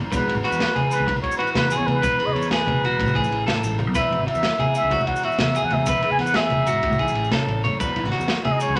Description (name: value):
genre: highlife guitar band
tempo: 125 BPM (dotted quarters)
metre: 12/8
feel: straight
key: E major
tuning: A4 = 440 Hz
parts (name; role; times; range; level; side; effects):
- nylon-string guitar; accompaniment; 0.0-8.8 s; E2 to G#4; -33 LUFS; equal; none
- fingered electric bass; bass; 0.0-8.8 s; E1 to E2; -30 LUFS; equal; none
- trumpet with plunger mute; melody; 0.1-8.8 s; B4 to G#5; -26 LUFS; equal; none
- electric guitar at the edge of break-up; arpeggios; 0.1-8.8 s; F#4 to C#5; -28 LUFS; equal; none
- crunchy breakbeat drum kit; drums; 0.1-8.8 s; kick drum, ride cymbal, snare drum; -30 LUFS; equal; none
- agogo bells; percussion; 0.1-8.8 s; none; -39 LUFS; equal; none
- congas; percussion; 0.1-8.8 s; none; -30 LUFS; equal; none
- maracas; percussion; 0.1-8.7 s; none; -43 LUFS; equal; none
room: wet small room reverb, RT60 0.5 s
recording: none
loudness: -21 LUFS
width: mono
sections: 0.0-8.8 A section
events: none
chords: 0.1 Eadd9; 2.0 E; 3.0 A5; 4.0 Eadd9; 5.9 E; 6.8 A; 7.8 Eadd9